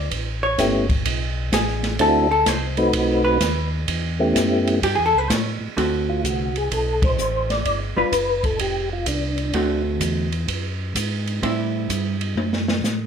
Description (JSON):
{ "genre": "soul jazz organ trio", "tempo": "127 BPM", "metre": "4/4", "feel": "swing 66% on 8ths", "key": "D mixolydian", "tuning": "A4 = 440 Hz", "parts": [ { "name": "vintage hollow-body jazz guitar", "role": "accompaniment", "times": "0.0-12.1 s", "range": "D3 to C#5", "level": "-22 LUFS", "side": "equal", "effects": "none" }, { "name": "mellow tonewheel organ", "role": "bass", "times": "0.0-13.1 s", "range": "F1 to A2", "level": "-26 LUFS", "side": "equal", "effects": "chorus vibrato, slow rotary speaker" }, { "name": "open jazz drum kit", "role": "drums", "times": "0.1-13.0 s", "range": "hi-hat, kick drum, ride cymbal, snare drum, toms", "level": "-25 LUFS", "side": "right 1 dB", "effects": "none" }, { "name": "percussive tonewheel organ", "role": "melody", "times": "0.6-9.8 s", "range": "A3 to D5", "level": "-21 LUFS", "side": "equal", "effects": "slow rotary speaker, chorus vibrato" } ], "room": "light reverb", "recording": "none", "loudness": "-19 LUFS", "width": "side -7 dB against mid", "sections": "0.0-5.8 A section; 5.8-13.1 B section", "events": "hollow-body jazz guitar solo 0.0-5.8; band accent 6.9; drum fill 12.4-12.8", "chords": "0.1 A7; 2.0 D7; 2.9 B7b9; 3.9 A7; 5.8 D7; 7.7 G7; 9.5 D7; 11.4 Am7; 12.4 F#m" }